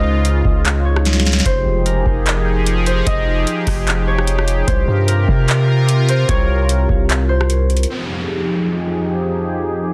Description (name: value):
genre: hip hop, atmospheric cloud-rap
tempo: 149 BPM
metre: 4/4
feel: half-time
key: F minor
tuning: A4 = 441 Hz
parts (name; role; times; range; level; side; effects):
- concert harp; melody; 0.0-9.3 s; Bb4 to Eb5; -26 LUFS; equal; low-pass filter, delay
- sweeping resonant pad; sustained chords; 0.0-9.9 s; F2 to Bb4; -23 LUFS; equal; chorus, sidechain pumping, low-pass filter
- long sustained 808-style bass; bass; 0.0-7.9 s; F1 to C3; -19 LUFS; equal; none
- booming analog drum machine; drums; 0.2-7.9 s; handclaps, hi-hat, kick drum, rim click, snare drum; -21 LUFS; equal; none
- downlifter; sound effects; 7.9-9.9 s; none; -30 LUFS; equal; none
room: little or no reverb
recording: dense, heavily limited modern master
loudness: -16 LUFS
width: mono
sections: 0.0-7.9 A section; 7.9-9.9 B section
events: drum fill 1.1-1.5; filter sweep on analog synth pad 7.9-9.9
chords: 0.0 Dbmaj9; 1.5 Fm9; 4.7 C7sus4; 7.9 Fm9